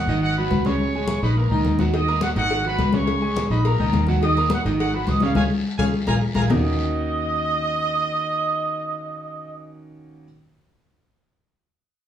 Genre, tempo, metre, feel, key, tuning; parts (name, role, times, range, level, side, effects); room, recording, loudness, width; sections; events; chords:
latin, salsa; 210 BPM; 4/4; straight; Eb minor; A4 = 440 Hz
warm trumpet section; melody; 0.0-9.5 s; Gb4 to Eb6; -25 LUFS; right 1 dB
bright grand piano; accompaniment; 0.0-10.2 s; Db3 to Eb6; -26 LUFS; right 3 dB
fingered electric bass; bass; 0.0-10.2 s; Ab1 to Eb2; -23 LUFS; left 1 dB
congas; percussion; 0.1-6.6 s; -25 LUFS; left 4 dB
guiro; percussion; 0.1-6.6 s; -39 LUFS; left 4 dB
cowbell and bongos; percussion; 1.9-6.6 s; -30 LUFS; left 4 dB
wet studio reverb, RT60 0.8 s; heard from further back in the room, small room ambience; -19 LUFS; side -10 dB against mid
0.0-6.5 A section; 6.5-8.8 B section
band accent 5.4-6.5; drum fill 6.1-6.5
0.2 Abm7; 0.8 Db5; 1.4 Bbsus4; 1.9 Ebm; 2.5 Abm7; 3.1 Db5; 3.6 Bbsus4; 4.2 Ebm; 4.8 Abm7; 5.4 Db; 5.9 Bb5; 6.5 Ebm7